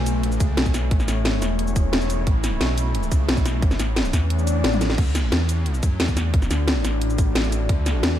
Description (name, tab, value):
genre	dark technical drum and bass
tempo	177 BPM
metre	4/4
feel	straight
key	unclear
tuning	A4 = 436 Hz
part	deep dark ambient pad	sustained chords	0.0-8.2 s	A3 to D5	-28 LUFS	left 3 dB	chorus, built-in reverb, sidechain pumping
part	wide detuned saw bass	bass	0.0-8.2 s	E1 to F#2	-22 LUFS	equal	chorus, overdrive
part	drum and bass drum kit	drums	0.1-8.1 s	crash cymbal, hi-hat, shaker, snare drum, toms	-24 LUFS	equal	overdrive, studio reverb
part	electronic kick drum	drums	0.4-7.8 s	none	-20 LUFS	equal	overdrive, studio reverb
part	swell	sound effects	4.4-5.0 s	none	-28 LUFS	left 4 dB	none
room	little or no reverb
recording	dark, warm production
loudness	-19 LUFS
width	side -11 dB against mid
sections	0.0-8.2 A section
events	kick drops out 4.3-5.0; swell 4.4-5.0; drum fill 4.7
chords	0.0 A; 5.0 D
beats	0.23 0.57 | 0.91 1.25 1.59 1.93 | 2.27 2.61 2.95 3.29 | 3.62 3.96 4.30 4.64 | 4.98 5.32 5.66 6.00 | 6.34 6.67 7.01 7.35 | 7.69 8.03